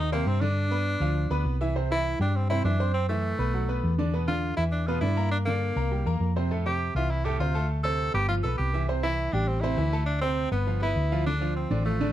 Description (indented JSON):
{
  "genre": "latin",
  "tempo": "202 BPM",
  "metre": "4/4",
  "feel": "straight",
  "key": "C major",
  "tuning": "A4 = 440 Hz",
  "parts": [
    { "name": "clear tenor saxophone", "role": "melody", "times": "0.0-12.1 s", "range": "A3 to A4", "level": "-30 LUFS", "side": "equal", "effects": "none" },
    { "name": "bright baby grand piano", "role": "accompaniment", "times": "0.0-12.1 s", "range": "A2 to C6", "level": "-31 LUFS", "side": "right 2 dB", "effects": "none" },
    { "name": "hollow-body short-scale fingered electric bass", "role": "bass", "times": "0.0-12.1 s", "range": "G1 to G2", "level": "-26 LUFS", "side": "equal", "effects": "none" }
  ],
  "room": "little or no reverb",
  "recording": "close, detailed microphones",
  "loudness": "-24 LUFS",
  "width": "side -12 dB against mid",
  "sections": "0.0-1.8 A section; 1.8-11.3 B section",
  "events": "none",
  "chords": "0.0 Abmaj7 (rootless); 0.6 G7; 1.8 C; 2.9 F#m7b5; 3.5 B5; 4.1 Em7; 5.3 Gm; 5.9 C7; 6.5 Fmaj9; 7.7 D5; 8.3 G7; 8.9 C; 9.5 Am7; 10.1 D5; 10.7 G7; 11.3 Dm7",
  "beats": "0.27 | 0.56 0.86 1.16 1.45 | 1.75 2.05 2.35 2.64 | 2.94 3.24 3.54 3.83 | 4.13 4.43 4.72 5.02 | 5.32 5.62 5.91 6.21 | 6.51 6.80 7.10 7.40 | 7.70 7.99 8.29 8.59 | 8.88 9.18 9.48 9.78 | 10.07 10.37 10.67 10.96 | 11.26 11.56 11.86"
}